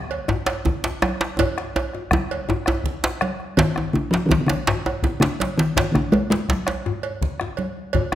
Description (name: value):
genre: west african traditional, West African drum ensemble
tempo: 110 BPM (dotted quarters)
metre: 12/8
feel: straight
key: Db major pentatonic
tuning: A4 = 442 Hz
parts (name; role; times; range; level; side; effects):
- bombo; percussion; 0.1-8.2 s; none; -27 LUFS; left 1 dB; none
- cowbell; percussion; 0.1-8.1 s; none; -30 LUFS; right 5 dB; none
- djembe; percussion; 0.3-8.1 s; none; -29 LUFS; left 4 dB; none
- djembe; percussion; 0.3-8.2 s; none; -24 LUFS; right 1 dB; none
- congas; percussion; 0.5-8.2 s; none; -31 LUFS; right 3 dB; none
- talking drum; melody; 3.6-7.0 s; Db3 to Ab3; -20 LUFS; left 1 dB; none
room: moderate recital hall reverb, RT60 1.4 s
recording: none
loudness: -20 LUFS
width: side -12 dB against mid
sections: 0.0-3.6 A section; 3.6-8.2 B section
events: drum fill 1.4-3.6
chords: none